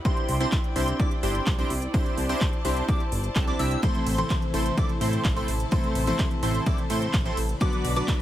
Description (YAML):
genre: EDM, festival progressive house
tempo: 127 BPM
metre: 4/4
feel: straight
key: unclear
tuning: A4 = 439 Hz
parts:
  - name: dark chamber string section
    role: sustained chords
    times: 0.0-8.2 s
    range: E4 to B5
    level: -35 LUFS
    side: left 1 dB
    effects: sidechain pumping
  - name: big-room dance drum kit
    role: drums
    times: 0.0-8.2 s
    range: handclaps, hi-hat, ride cymbal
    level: -35 LUFS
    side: right 1 dB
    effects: overdrive
  - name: plucky unison lead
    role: arpeggios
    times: 0.1-8.2 s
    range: A5 to E6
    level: -34 LUFS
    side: equal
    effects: ensemble chorus, sidechain pumping, tape echo
  - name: supersaw stab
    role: riff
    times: 0.1-8.2 s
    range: A3 to E5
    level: -30 LUFS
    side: right 1 dB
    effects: cassette tape, sidechain pumping, tape echo
  - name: electronic kick drum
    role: drums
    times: 0.1-8.2 s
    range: none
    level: -26 LUFS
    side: equal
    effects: overdrive
  - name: fat analog bass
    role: bass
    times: 0.3-8.0 s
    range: G1 to A2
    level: -28 LUFS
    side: equal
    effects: sidechain pumping
  - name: picked steel-string acoustic guitar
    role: accompaniment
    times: 3.8-8.2 s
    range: C3 to F#4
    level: -31 LUFS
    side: left 2 dB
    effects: sidechain pumping
room: little or no reverb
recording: none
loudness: -22 LUFS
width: side -13 dB against mid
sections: 0.0-8.2 A section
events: none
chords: 0.1 Cadd9; 3.8 Am; 7.6 Bm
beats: | 0.05 0.52 0.99 1.47 | 1.94 2.41 2.88 3.36 | 3.83 4.30 4.77 5.25 | 5.72 6.19 6.66 7.14 | 7.61 8.08